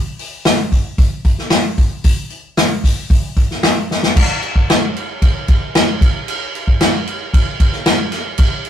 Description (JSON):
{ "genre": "rock", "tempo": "113 BPM", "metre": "4/4", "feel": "straight", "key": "none", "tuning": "none", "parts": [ { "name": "unplugged drum kit", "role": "drums", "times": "0.2-8.7 s", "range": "crash cymbal, hi-hat, kick drum, snare drum", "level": "-13 LUFS", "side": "equal", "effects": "none" } ], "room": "light reverb", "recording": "rough rehearsal-room recording, tube saturation", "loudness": "-13 LUFS", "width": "side -10 dB against mid", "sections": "0.0-4.2 A section; 4.2-8.7 B section", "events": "drum fill 3.9", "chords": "none", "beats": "0.45 0.98 1.51 | 2.04 2.58 3.11 3.64 | 4.17 4.69 5.22 5.75 | 6.28 6.80 7.33 7.86 | 8.38" }